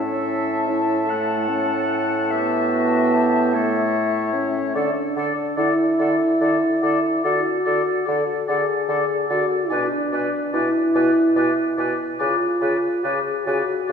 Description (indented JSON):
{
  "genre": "classical, slow romantic movement for wind quintet",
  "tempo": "48 BPM (dotted quarters)",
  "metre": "12/8",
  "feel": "rubato",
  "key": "unclear",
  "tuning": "A4 = 439 Hz",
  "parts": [
    { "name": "hollow concert flute", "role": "melody", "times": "0.0-13.9 s", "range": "E5 to A5", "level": "-29 LUFS", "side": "left 5 dB", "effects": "none" },
    { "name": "warm oboe", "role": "second line", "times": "0.0-13.9 s", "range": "C#5 to F#5", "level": "-26 LUFS", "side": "left 5 dB", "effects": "none" },
    { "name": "bright clarinet", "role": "accompaniment", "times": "0.0-13.9 s", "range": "F#4 to B4", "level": "-31 LUFS", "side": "right 5 dB", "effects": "none" },
    { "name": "mellow French horn", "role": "accompaniment", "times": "0.0-13.9 s", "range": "A3 to A4", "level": "-21 LUFS", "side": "equal", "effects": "none" },
    { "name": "warm bassoon", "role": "bass", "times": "0.0-13.9 s", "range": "A2 to D3", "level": "-24 LUFS", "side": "right 2 dB", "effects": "none" }
  ],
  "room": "wet concert hall reverb, RT60 1.9 s",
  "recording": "none",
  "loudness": "-18 LUFS",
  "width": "side -6 dB against mid",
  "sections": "0.0-13.9 A section",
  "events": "none",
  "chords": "0.0 A7; 4.8 D; 9.7 G#dim/B (rootless); 12.2 C#7b9"
}